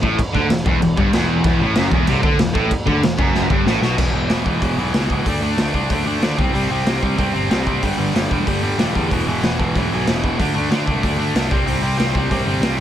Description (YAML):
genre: punk rock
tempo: 188 BPM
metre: 4/4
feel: straight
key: E minor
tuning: A4 = 441 Hz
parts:
  - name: sludgy distorted guitar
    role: riff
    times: 0.0-12.8 s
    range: E2 to D4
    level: -20 LUFS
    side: equal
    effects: overdrive
  - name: sludgy distorted guitar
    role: riff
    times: 0.0-4.0 s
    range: E2 to D3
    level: -22 LUFS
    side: equal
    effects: overdrive
  - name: fuzz picked electric bass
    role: bass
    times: 0.0-12.8 s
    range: E1 to E2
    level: -23 LUFS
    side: equal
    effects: overdrive
  - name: raw garage drum kit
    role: drums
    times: 0.0-12.7 s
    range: crash cymbal, hi-hat, kick drum, snare drum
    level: -20 LUFS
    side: equal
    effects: none
room: little or no reverb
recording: none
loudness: -16 LUFS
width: side -11 dB against mid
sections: 0.0-4.0 A section; 4.0-12.8 B section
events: drum fill 3.3-4.0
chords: 0.0 Em; 4.0 E5; 5.3 D5; 6.4 C5; 7.8 G5; 9.1 E5; 10.4 D5; 11.5 C5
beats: | 0.19 0.51 0.82 1.13 | 1.45 1.76 2.08 2.40 | 2.71 3.03 3.35 3.66 | 3.98 4.30 4.62 4.94 | 5.26 5.58 5.90 6.22 | 6.54 6.86 7.18 7.50 | 7.82 8.14 8.47 8.79 | 9.11 9.43 9.75 10.07 | 10.39 10.71 11.03 11.35 | 11.67 11.99 12.31 12.63